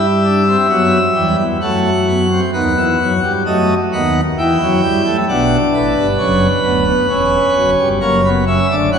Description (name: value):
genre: classical, baroque-style 3-part fugue for pipe organ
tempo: 65 BPM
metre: 3/4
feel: straight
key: E minor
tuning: A4 = 440 Hz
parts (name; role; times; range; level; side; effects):
- pipe organ, plenum; solo; 0.0-9.0 s; D1 to G5; -12 LUFS; equal; none
room: wet church reverb, RT60 3.6 s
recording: recorded in a church or concert hall, nothing above 10.5 kHz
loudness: -12 LUFS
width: side -6 dB against mid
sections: 0.0-9.0 A section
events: none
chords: 0.0 Em/G; 1.6 F#dim; 2.5 B/D#; 4.4 Em; 5.3 Bm; 7.1 C#m7b5/E; 8.0 F#